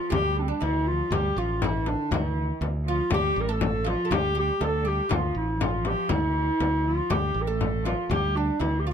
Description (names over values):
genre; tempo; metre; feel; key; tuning
Arabic maqam ensemble; 120 BPM; 4/4; straight; D maqam bayati; A4 = 442 Hz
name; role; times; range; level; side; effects
mellow clarinet; melody; 0.0-8.9 s; C4 to Bb4; -27 LUFS; equal; none
oud; second line; 0.0-8.9 s; D4 to A4; -36 LUFS; right 9 dB; none
warm studio cello section; second line; 0.0-8.9 s; D3 to A3; -34 LUFS; right 2 dB; none
modern bright fingered electric bass; bass; 0.1-8.9 s; A1 to D2; -28 LUFS; equal; none
frame drum; percussion; 0.1-8.7 s; none; -29 LUFS; left 5 dB; none
room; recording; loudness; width
little or no reverb; close, detailed microphones; -23 LUFS; side -8 dB against mid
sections
0.0-8.9 A section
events
none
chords
none